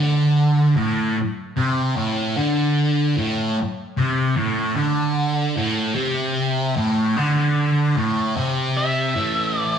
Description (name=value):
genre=rock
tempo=50 BPM (dotted quarters)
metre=6/8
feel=straight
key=unclear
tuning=A4 = 440 Hz
part: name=thick fuzz guitar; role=riff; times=0.0-9.8 s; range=A2 to A3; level=-18 LUFS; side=equal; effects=distortion, phaser
part: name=octave-fuzz lead guitar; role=melody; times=8.8-9.8 s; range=E5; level=-22 LUFS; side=right 1 dB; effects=distortion
room=wet stone room reverb, RT60 1.4 s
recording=rough rehearsal-room recording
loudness=-18 LUFS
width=side -8 dB against mid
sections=0.0-9.2 A section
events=none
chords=0.0 Amadd11; 9.2 A5